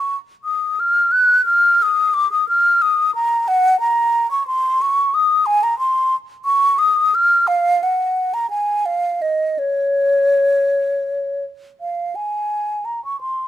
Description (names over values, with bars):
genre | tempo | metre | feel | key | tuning
classical, baroque-style fantasia for unaccompanied flute | 80-91 BPM | 3/4 | rubato | Db major from 3.5 s | A4 = 440 Hz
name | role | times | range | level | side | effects
mellow hollow concert flute | solo | 0.0-13.5 s | Db5 to Gb6 | -15 LUFS | equal | none
room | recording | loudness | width
light reverb | close, detailed microphones | -15 LUFS | side -12 dB against mid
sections
0.0-11.8 A section; 11.8-13.5 A section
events
none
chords
none